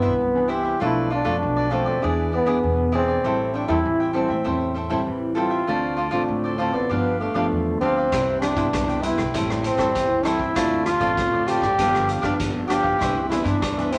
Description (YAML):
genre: samba and choro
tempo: 98 BPM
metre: 4/4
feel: straight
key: C major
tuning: A4 = 440 Hz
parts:
  - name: warm trombone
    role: melody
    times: 0.0-14.0 s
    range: A3 to G4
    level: -25 LUFS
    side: equal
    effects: none
  - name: cavaquinho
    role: accompaniment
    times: 0.0-14.0 s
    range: D4 to G5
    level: -30 LUFS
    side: equal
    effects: none
  - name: nylon-string guitar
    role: accompaniment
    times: 0.0-14.0 s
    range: G2 to G#4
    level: -28 LUFS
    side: equal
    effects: none
  - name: upright bass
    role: bass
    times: 0.0-14.0 s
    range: G1 to A2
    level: -32 LUFS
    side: equal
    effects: none
  - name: swinging big-band drum kit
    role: drums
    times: 8.1-14.0 s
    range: hi-hat, kick drum, rim click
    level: -31 LUFS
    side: equal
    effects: none
room: wet studio reverb, RT60 0.9 s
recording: none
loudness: -22 LUFS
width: mono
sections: 0.0-14.0 A section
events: none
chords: 0.0 Cmaj9; 0.8 Bm7b5; 2.0 E7; 3.2 Am7; 5.7 Dm7; 6.9 G7; 8.1 Cmaj7; 9.3 Am7; 10.6 Dm7; 11.8 G7; 13.0 Cmaj9